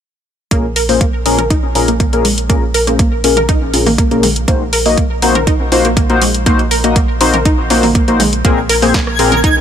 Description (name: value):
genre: progressive house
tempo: 121 BPM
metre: 4/4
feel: straight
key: Bb minor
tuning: A4 = 440 Hz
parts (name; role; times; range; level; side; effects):
- wide unison pluck; arpeggios; 0.5-9.5 s; Ab3 to Bb4; -16 LUFS; right 1 dB; sidechain pumping, tape echo
- chorused polysynth; stabs; 0.5-9.3 s; Bb2 to Eb5; -15 LUFS; left 3 dB; sidechain pumping, tape echo
- round analog bass; bass; 0.5-9.6 s; Bb1; -20 LUFS; right 1 dB; sidechain pumping
- electronic kick drum; drums; 0.5-9.5 s; none; -14 LUFS; right 1 dB; none
- house drum kit; drums; 0.5-9.5 s; hi-hat, rim click, snare drum; -18 LUFS; equal; none
- electronic toms and congas; percussion; 1.4-9.6 s; none; -24 LUFS; left 4 dB; sidechain pumping on toms, sidechain pumping on perc
- twinkling granular texture; texture; 8.7-9.6 s; Ab6; -18 LUFS; right 2 dB; built-in reverb, sidechain pumping
room: light reverb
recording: none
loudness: -10 LUFS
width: side -8 dB against mid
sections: 0.5-9.6 A section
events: filter sweep on analog polysynth 0.5-9.6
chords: 0.5 Bbm7; 4.5 Cdim/Bb; 8.4 Abadd9/Bb